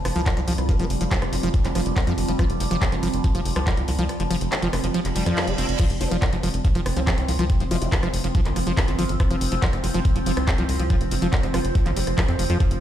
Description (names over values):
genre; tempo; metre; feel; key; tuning
psychedelic trance; 141 BPM; 4/4; straight; unclear; A4 = 440 Hz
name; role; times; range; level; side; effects
overtone-sweeping drone; sustained chords; 0.0-12.8 s; F3 to C4; -30 LUFS; right 1 dB; chorus, built-in reverb, phaser, sidechain pumping
tight sequencer bass; bass; 0.0-12.8 s; F1 to F2; -25 LUFS; equal; none
warbly tape-like pad; texture; 0.0-12.8 s; C4 to C6; -32 LUFS; right 3 dB; chorus, built-in reverb, phaser, sidechain pumping
liquid acid bass; riff; 0.1-12.6 s; F3 to C4; -28 LUFS; moving between left 4 dB and right 4 dB; chorus, auto-pan, sidechain pumping, tape echo
drum and bass drum kit; drums; 0.1-12.8 s; crash cymbal, handclaps, hi-hat, rim click; -29 LUFS; equal; none
electronic kick drum; drums; 0.3-12.7 s; none; -21 LUFS; equal; none
vowel-sweep wobble bass; second line; 0.7-0.9, 6.0-7.9 s; Bb3 to E4; -37 LUFS; left 2 dB; chorus, sidechain pumping, high-pass filter, ping-pong delay
reverse cymbal; sound effects; 5.1-5.8 s; none; -32 LUFS; right 5 dB; none
room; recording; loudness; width
digital ambience; played on a big sound system in a bare room, stone room reverb; -20 LUFS; side -11 dB against mid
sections
0.0-5.8 A section; 5.8-12.8 B section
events
kick drops out 4.1-5.8; reverse cymbal 5.1-5.8; drop 5.8-12.8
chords
0.0 F5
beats
0.26 | 0.69 1.11 1.54 1.97 | 2.39 2.82 3.24 3.67 | 4.09 4.52 4.94 5.37 | 5.79 6.22 6.65 7.07 | 7.50 7.92 8.35 8.77 | 9.20 9.62 10.05 10.48 | 10.90 11.33 11.75 12.18 | 12.60